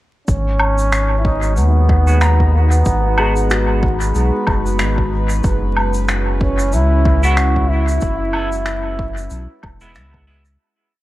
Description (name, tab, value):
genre	ambient dub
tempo	93 BPM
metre	4/4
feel	swing 57% on 16ths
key	G# minor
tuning	A4 = 440 Hz
part	warm trombone	melody	0.3-9.6 s	B3 to F#4	-22 LUFS	right 1 dB	dub echo
part	warbly tape-like pad	sustained chords	0.3-10.6 s	G#3 to B4	-24 LUFS	right 1 dB	chorus, built-in reverb, phaser
part	warm sub bass	bass	0.3-10.6 s	E1 to D#2	-16 LUFS	equal	tube saturation
part	electronic kick drum	drums	0.3-10.3 s	none	-20 LUFS	equal	overdrive
part	shaker, woodblock and finger snaps	drums	0.3-10.6 s	none	-24 LUFS	equal	dub echo
part	clean electric guitar	stabs	2.1-3.3, 7.2-10.4 s	G#3 to F#4	-28 LUFS	right 2 dB	analog chorus, low-pass filter, dub echo
part	felt-muted upright piano	arpeggios	2.2-5.5 s	F#4 to A#5	-26 LUFS	left 2 dB	dub echo
room	light reverb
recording	echo-heavy mix, vinyl crackle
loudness	-13 LUFS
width	side -16 dB against mid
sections	0.3-10.6 groove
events	fade-out 7.2-10.6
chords	0.3 G#m7; 5.4 F#9sus4